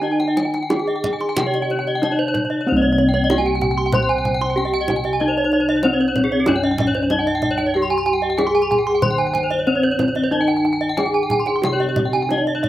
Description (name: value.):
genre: Balinese gamelan.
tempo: 94 BPM.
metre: 4/4.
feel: straight.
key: C pelog.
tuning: A4 = 440 Hz.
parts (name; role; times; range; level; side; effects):
gamelan-type bronze metallophone; melody; 0.0-12.7 s; C4 to C5; -20 LUFS; equal; slapback echo.
gamelan-type bronze metallophone; arpeggios; 0.0-12.6 s; Ab4-20c to C6; -24 LUFS; left 5 dB; none.
gamelan-type bossed gongs; bass; 0.0-12.7 s; C2 to G4-30c; -24 LUFS; equal; none.
gamelan-type bronze metallophone; arpeggios; 0.1-12.7 s; Ab4-20c to C6; -23 LUFS; right 4 dB; slapback echo.
kendang; percussion; 0.2-12.7 s; none; -25 LUFS; right 1 dB; none.
room: little or no reverb.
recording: recorded outdoors, with no room sound.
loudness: -16 LUFS.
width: side -13 dB against mid.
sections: 0.0-2.7 A section; 2.7-12.7 B section.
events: none.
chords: none.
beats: | 0.02 0.70 1.37 2.02 | 2.67 3.30 3.94 4.57 | 5.21 5.84 6.48 7.12 | 7.75 8.39 9.03 9.68 | 10.33 10.98 11.64 12.30.